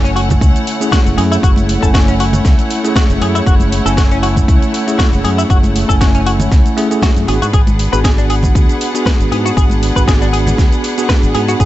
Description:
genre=nu-disco, nu disco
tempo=118 BPM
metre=4/4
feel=swing 54% on 16ths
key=F# minor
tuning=A4 = 440 Hz
part: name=bell-like tine electric piano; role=accompaniment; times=0.0-11.7 s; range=A3 to G#5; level=-18 LUFS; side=right 1 dB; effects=fast stereo tremolo, vintage 12-bit sampler grit, sidechain pumping, analog delay
part: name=rich studio string section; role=sustained chords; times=0.0-11.7 s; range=A3 to F#5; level=-22 LUFS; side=equal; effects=sidechain pumping
part: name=direct-recorded clean electric guitar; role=riff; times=0.0-11.7 s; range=C#4 to B4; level=-21 LUFS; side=left 3 dB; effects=analog chorus, analog delay
part: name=fingered electric bass with an envelope filter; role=bass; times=0.0-11.7 s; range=F#1 to G#2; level=-16 LUFS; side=equal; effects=none
part: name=house drum kit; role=drums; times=0.1-11.7 s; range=hi-hat, shaker, snare drum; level=-23 LUFS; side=right 1 dB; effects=small room reverb
part: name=electronic kick drum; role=drums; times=0.3-11.7 s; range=none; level=-12 LUFS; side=equal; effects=small room reverb
part: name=congas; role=percussion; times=0.3-11.2 s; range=none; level=-23 LUFS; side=right 1 dB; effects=none
room=digital ambience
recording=nothing above 8.0 kHz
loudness=-10 LUFS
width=side -14 dB against mid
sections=0.0-11.7 A section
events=none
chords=0.0 F#m7; 7.3 G#m7b5

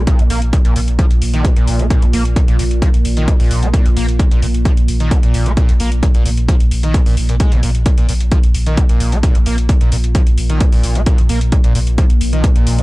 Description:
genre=driving peak-time techno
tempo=131 BPM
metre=4/4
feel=straight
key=unclear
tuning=A4 = 440 Hz
part: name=screaming distorted acid line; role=riff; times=0.0-12.8 s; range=Bb1 to Bb3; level=-22 LUFS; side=equal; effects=distortion, lush chorus, sidechain pumping, analog delay
part: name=saturated sub bass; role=bass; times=0.0-12.8 s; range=Bb1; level=-16 LUFS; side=equal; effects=overdrive, sidechain pumping, low-pass filter
part: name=deep dark ambient pad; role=drone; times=0.0-12.8 s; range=Bb2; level=-23 LUFS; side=right 1 dB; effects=chorus, built-in reverb, sidechain pumping
part: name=electronic hi-hat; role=drums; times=0.1-12.8 s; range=none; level=-28 LUFS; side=left 1 dB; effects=none
part: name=electronic kick drum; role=drums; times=0.1-12.5 s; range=none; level=-12 LUFS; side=equal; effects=none
room=little or no reverb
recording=dry, gritty hardware recording, cassette tape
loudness=-11 LUFS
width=side -20 dB against mid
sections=0.0-12.8 A section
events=none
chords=0.0 Bb5

